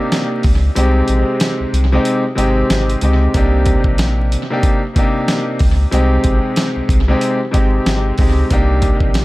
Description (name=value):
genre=hip hop, boom-bap hip-hop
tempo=93 BPM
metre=4/4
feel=swing 59% on 16ths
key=unclear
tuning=A4 = 437 Hz
part: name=bright concert grand piano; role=accompaniment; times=0.0-9.2 s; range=C3 to G4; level=-17 LUFS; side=equal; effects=cassette tape, high-pass filter, low-pass filter, analog delay
part: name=dusty soul sampler-style drum kit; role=drums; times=0.1-9.2 s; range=hi-hat, kick drum, snare drum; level=-17 LUFS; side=equal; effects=analog delay
part: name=sub bass with octave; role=bass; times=0.4-9.2 s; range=Ab1 to Db2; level=-15 LUFS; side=equal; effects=none
room=light reverb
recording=echo-heavy mix, vinyl crackle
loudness=-12 LUFS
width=side -19 dB against mid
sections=0.0-9.2 A section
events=kick muted 0.8-3.3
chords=0.0 Cm7; 0.8 Abmaj7; 3.3 Cm7; 5.9 Abmaj7; 8.5 Cm7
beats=0.12 | 0.77 1.41 2.06 2.70 | 3.35 3.99 4.64 5.28 | 5.93 6.57 7.22 7.86 | 8.51 9.15